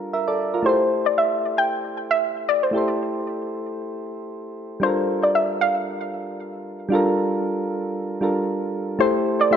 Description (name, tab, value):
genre	amapiano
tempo	115 BPM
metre	4/4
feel	swing 55% on 16ths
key	A phrygian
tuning	A4 = 441 Hz
part	soft electric-piano-like synth keys	accompaniment	0.0-9.6 s	G3 to E5	-23 LUFS	right 1 dB	chorus
part	soft round pluck	melody	0.7-9.6 s	C5 to G5	-21 LUFS	left 1 dB	chorus, digital delay
room	moderate lush hall reverb, RT60 2.6 s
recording	none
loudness	-20 LUFS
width	side -8 dB against mid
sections	0.0-9.0 A section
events	none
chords	0.0 Gm9; 0.7 Am7; 4.8 Gm9; 9.0 Am7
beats	0.13 | 0.65 1.18 1.70 2.22 | 2.74 3.26 3.78 4.30 | 4.83 5.35 5.87 6.39 | 6.91 7.44 7.96 8.48 | 9.00 9.52